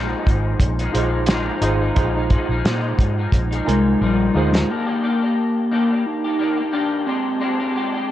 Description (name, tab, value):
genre	indie pop, bedroom pop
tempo	88 BPM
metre	4/4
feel	swing 55% on 16ths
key	Eb major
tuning	A4 = 439 Hz
part	electric guitar through a small old amp	accompaniment	0.0-8.1 s	Bb2 to G4	-25 LUFS	left 3 dB	analog chorus, vibrato effect
part	tine electric piano	accompaniment	0.0-4.7 s	Eb4 to Ab5	-25 LUFS	right 3 dB	medium stereo tremolo
part	vintage muted fingered electric bass	bass	0.0-4.6 s	Ab1 to Bb2	-22 LUFS	equal	none
part	cloth-damped thuddy drum kit	drums	0.3-4.7 s	hi-hat, kick drum, snare drum	-19 LUFS	equal	vintage 12-bit sampler grit
part	warbly nostalgic lead	melody	3.7-8.1 s	G3 to Eb4	-19 LUFS	left 1 dB	analog chorus
room	light reverb, small room reverb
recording	cassette tape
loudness	-17 LUFS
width	side -12 dB against mid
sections	0.0-4.7 A section; 4.7-8.1 B section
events	drum fill 4.0-4.7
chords	0.0 Bb7sus4; 4.7 Ebmaj7; 7.1 Bb13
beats	0.61 1.29 | 1.97 2.65 3.33 4.01 | 4.69 5.37 6.05 6.73 | 7.41 8.10